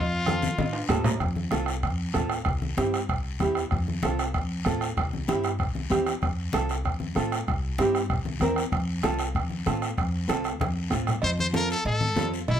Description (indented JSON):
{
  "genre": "latin, cumbia",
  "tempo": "192 BPM",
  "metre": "4/4",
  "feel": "straight",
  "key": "F major",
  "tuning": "A4 = 440 Hz",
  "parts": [
    { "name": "brilliant trumpet", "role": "melody", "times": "0.0-0.8, 11.2-12.6 s", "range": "E4 to C5", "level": "-28 LUFS", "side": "left 2 dB", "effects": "plate reverb" },
    { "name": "upright bass", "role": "bass", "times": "0.0-12.6 s", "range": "C2 to A2", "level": "-30 LUFS", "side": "equal", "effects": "none" },
    { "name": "nylon-string guitar", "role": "accompaniment", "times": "0.3-12.4 s", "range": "C4 to Bb4", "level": "-28 LUFS", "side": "right 2 dB", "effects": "none" },
    { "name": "bombo", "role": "percussion", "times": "0.3-11.2 s", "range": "none", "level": "-30 LUFS", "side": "right 1 dB", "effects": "none" },
    { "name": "congas", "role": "percussion", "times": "0.3-12.6 s", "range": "none", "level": "-32 LUFS", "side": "left 3 dB", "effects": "none" },
    { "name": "guiro", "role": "percussion", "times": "0.3-12.6 s", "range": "none", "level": "-40 LUFS", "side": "left 7 dB", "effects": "none" },
    { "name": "cowbell and timbales", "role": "percussion", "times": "0.6-1.1, 11.2-12.6 s", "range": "none", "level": "-31 LUFS", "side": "right 4 dB", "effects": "none" }
  ],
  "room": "moderate studio ambience, RT60 0.5 s",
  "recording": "none",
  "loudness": "-24 LUFS",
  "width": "side -9 dB against mid",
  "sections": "0.0-1.2 A section; 1.2-11.2 B section; 11.2-12.6 C section",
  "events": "drum fill 0.4-1.2, 10.6-11.2",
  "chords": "0.0 F; 2.5 C; 3.7 F; 5.0 C; 6.2 F; 7.5 C7; 8.7 F",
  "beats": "0.27 0.58 0.90 | 1.21 1.52 1.84 2.15 | 2.46 2.78 3.09 3.40 | 3.71 4.03 4.34 4.66 | 4.97 5.28 5.59 5.91 | 6.22 6.53 6.85 7.16 | 7.47 7.79 8.10 8.41 | 8.73 9.04 9.35 9.66 | 9.98 10.29 10.60 10.92 | 11.23 11.54 11.86 12.17 | 12.48"
}